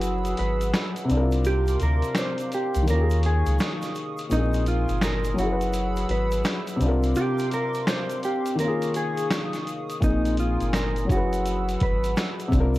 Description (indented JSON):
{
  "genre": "lo-fi hip hop",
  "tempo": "84 BPM",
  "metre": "4/4",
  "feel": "swing 64% on 16ths",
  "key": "unclear",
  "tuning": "A4 = 440 Hz",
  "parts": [
    { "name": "mellow electric guitar", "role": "melody", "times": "0.0-12.1 s", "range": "Eb4 to C5", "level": "-28 LUFS", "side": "right 1 dB", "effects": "vibrato effect, plate reverb" },
    { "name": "dark upright piano", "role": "accompaniment", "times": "0.0-12.8 s", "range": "Bb2 to Cb5", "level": "-27 LUFS", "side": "left 2 dB", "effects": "cassette tape, plate reverb" },
    { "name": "hollow soft pad", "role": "sustained chords", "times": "0.0-12.8 s", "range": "Ab4 to Fb6", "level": "-35 LUFS", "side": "right 1 dB", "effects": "chorus, plate reverb" },
    { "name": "soft dub sub bass", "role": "bass", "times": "0.0-12.8 s", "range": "Gb1 to Eb2", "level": "-24 LUFS", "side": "equal", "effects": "none" },
    { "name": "boom bap sampler-style drum kit", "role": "drums", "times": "0.0-12.8 s", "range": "finger snaps, hi-hat, kick drum, snare drum", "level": "-29 LUFS", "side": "equal", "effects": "none" },
    { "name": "egg shaker", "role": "percussion", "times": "0.0-12.8 s", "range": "none", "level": "-48 LUFS", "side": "right 5 dB", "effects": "none" }
  ],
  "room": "moderate small room reverb, RT60 0.5 s",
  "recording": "vinyl crackle",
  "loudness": "-22 LUFS",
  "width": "side -16 dB against mid",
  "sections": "0.0-12.8 A section",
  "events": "break 0.0-10.0",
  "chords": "0.0 Gb9sus4; 1.1 C9sus4; 2.9 Eb9sus4; 4.3 Bb9sus4; 5.4 Gb9sus4; 6.8 C9sus4; 8.6 Eb9sus4; 10.0 Bb9sus4; 11.1 Gb9sus4",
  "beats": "0.02 0.73 | 1.45 2.16 2.88 3.59 | 4.30 5.02 5.73 6.45 | 7.16 7.88 8.59 9.30 | 10.02 10.73 11.45 12.16"
}